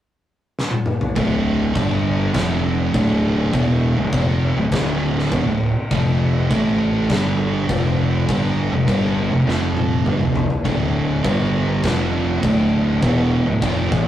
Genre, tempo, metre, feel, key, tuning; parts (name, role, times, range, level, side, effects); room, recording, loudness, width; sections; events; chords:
stoner and doom metal; 101 BPM; 4/4; straight; D dorian; A4 = 438 Hz
oversized low-tuned drum kit; drums; 0.6-14.1 s; crash cymbal, kick drum, snare drum, toms; -23 LUFS; left 1 dB
thick fuzz guitar; riff; 1.2-14.1 s; D2 to A3; -22 LUFS; left 3 dB; distortion
thick fuzz guitar; riff; 1.2-14.1 s; D2 to A3; -20 LUFS; right 3 dB; distortion
fuzz fingered electric bass; bass; 1.2-14.1 s; D1 to A1; -25 LUFS; equal; overdrive
moderate stone room reverb, RT60 1.4 s; rough rehearsal-room recording; -16 LUFS; side -12 dB against mid
0.0-1.2 A section; 1.2-14.1 B section
drum fill 0.6-1.2, 9.5-10.7
0.0 N.C.; 1.2 D5; 1.8 G5; 2.3 F5; 2.9 Dm; 5.9 F5; 6.5 A5; 7.1 G5; 7.7 F5; 10.7 D5; 11.2 G5; 11.8 F5; 12.4 Dm